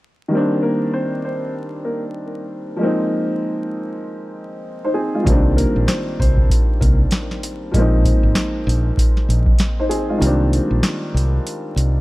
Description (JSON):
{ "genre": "hip hop, boom-bap hip-hop", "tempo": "97 BPM", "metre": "4/4", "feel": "swing 59% on 16ths", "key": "C minor", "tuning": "A4 = 440 Hz", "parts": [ { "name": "dark grand piano", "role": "accompaniment", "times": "0.3-12.0 s", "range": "Eb3 to C5", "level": "-21 LUFS", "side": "equal", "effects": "cassette tape, high-pass filter, low-pass filter" }, { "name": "dark upright piano", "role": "melody", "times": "0.6-7.0 s", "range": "Bb3 to C5", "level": "-27 LUFS", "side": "left 1 dB", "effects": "high-pass filter, low-pass filter, digital delay" }, { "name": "fingered electric bass", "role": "bass", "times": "5.3-12.0 s", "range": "Ab1 to C2", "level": "-17 LUFS", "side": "equal", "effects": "none" }, { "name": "booming analog drum machine", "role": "drums", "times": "5.3-11.9 s", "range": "hi-hat, kick drum, snare drum", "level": "-17 LUFS", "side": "equal", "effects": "none" } ], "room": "small room ambience", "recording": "vinyl crackle", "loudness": "-16 LUFS", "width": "side -19 dB against mid", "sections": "0.3-10.2 A section; 10.2-12.0 B section", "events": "kick muted 10.2-12.0", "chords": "0.3 Cm7; 2.8 Bb9sus4; 5.3 Cm7; 7.7 Bb9sus4; 10.2 Cm7" }